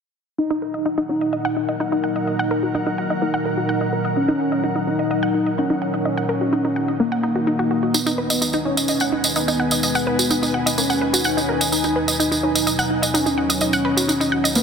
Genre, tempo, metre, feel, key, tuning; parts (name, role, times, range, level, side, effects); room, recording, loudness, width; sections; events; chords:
melodic techno; 127 BPM; 4/4; straight; Eb minor; A4 = 440 Hz
wide unison lead; melody; 0.4-14.6 s; Bb3 to Eb4; -23 LUFS; left 1 dB; lush chorus, ping-pong delay
evolving wavetable pad; sustained chords; 0.7-14.6 s; Eb2 to Eb4; -26 LUFS; left 1 dB; chorus, built-in reverb
wide unison pluck; arpeggios; 0.4-14.6 s; Bb3 to Gb5; -24 LUFS; equal; ping-pong delay
ethereal airy pad; texture; 0.8-14.6 s; Eb4 to Ab5; -27 LUFS; right 2 dB; ensemble chorus, built-in reverb
tambourine; percussion; 7.9-14.6 s; -22 LUFS; right 2 dB
swell; sound effects; 14.6 s; barely audible
wet lush hall reverb, RT60 2.3 s; dense, heavily limited modern master; -18 LUFS; side -6 dB against mid
0.4-14.6 A section
filter sweep on synth arpeggio sound 0.4-14.6; filter sweep on analog synth lead 0.4-14.6
0.4 Ebm; 7.9 Abm/Eb